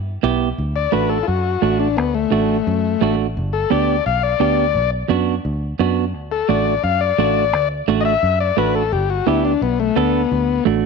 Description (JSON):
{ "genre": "latin, cumbia", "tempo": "173 BPM", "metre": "4/4", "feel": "straight", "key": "D major", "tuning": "A4 = 437 Hz", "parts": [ { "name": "fingered electric bass", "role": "bass", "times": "0.0-10.9 s", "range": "G1 to G2", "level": "-22 LUFS", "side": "equal", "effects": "none" }, { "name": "clean electric guitar", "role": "accompaniment", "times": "0.2-10.9 s", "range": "A3 to A4", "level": "-20 LUFS", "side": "right 14 dB", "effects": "none" }, { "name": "combo organ", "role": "melody", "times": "0.8-10.6 s", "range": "A3 to F5", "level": "-19 LUFS", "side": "left 11 dB", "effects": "none" } ], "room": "light reverb", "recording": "1960s-style stereo with parts hard left and right", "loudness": "-16 LUFS", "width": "side -4 dB against mid", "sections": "0.6-10.9 A section", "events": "transistor combo organ solo 0.6-10.9", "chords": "0.0 Em; 0.6 D; 3.4 G; 4.8 Bm; 6.1 D; 8.9 Gadd9; 10.3 D" }